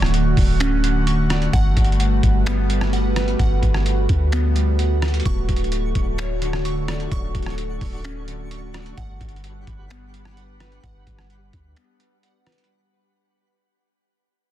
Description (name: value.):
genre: hip hop, atmospheric cloud-rap.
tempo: 129 BPM.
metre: 4/4.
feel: half-time.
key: unclear.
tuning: A4 = 441 Hz.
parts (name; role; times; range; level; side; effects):
warbly tape-like pad; sustained chords; 0.0-12.7 s; D3 to F#5; -25 LUFS; right 1 dB; chorus, built-in reverb, phaser, sidechain pumping.
glassy digital keys; arpeggios; 0.0-12.7 s; D3 to C#6; -30 LUFS; right 1 dB; chorus, ping-pong delay.
soft 808-style bass; bass; 0.0-11.8 s; D1 to D2; -21 LUFS; equal; none.
trip hop sampler-style drum kit; drums; 0.0-12.7 s; finger snaps, hi-hat, kick drum, rim click; -23 LUFS; equal; soft clipping on snare.
twinkling granular texture; texture; 5.6-12.7 s; D4 to C#6; -44 LUFS; equal; built-in reverb.
room: digital ambience.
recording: dense, heavily limited modern master.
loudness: -17 LUFS.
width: side -12 dB against mid.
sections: 0.0-12.7 A section.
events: fade-out 0.0-12.7; break 11.8-12.7.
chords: 0.0 Dmaj7; 1.5 Gmaj7; 5.3 Dmaj7; 9.0 Gmaj7.